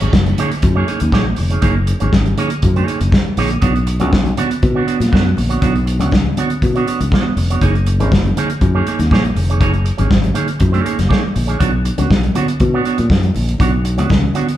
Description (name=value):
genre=disco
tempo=120 BPM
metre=4/4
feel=straight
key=F# major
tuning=A4 = 440 Hz
part: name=electric guitar with an envelope filter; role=accompaniment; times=0.0-14.5 s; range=A#3 to C#5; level=-20 LUFS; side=right 5 dB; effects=none
part: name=fingered electric bass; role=bass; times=0.0-14.3 s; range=E#1 to B2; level=-17 LUFS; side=equal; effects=none
part: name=warm soul drum kit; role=drums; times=0.0-14.6 s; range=hi-hat, kick drum, snare drum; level=-17 LUFS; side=equal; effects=none
part: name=congas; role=percussion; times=0.0-14.5 s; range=none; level=-24 LUFS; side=left 3 dB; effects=none
room=moderate large studio reverb, RT60 1.2 s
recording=band playing live in one room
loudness=-13 LUFS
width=side -12 dB against mid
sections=0.0-14.6 A section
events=none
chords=0.0 F#69; 3.6 Bmadd9; 7.6 F#69; 11.6 Bmadd9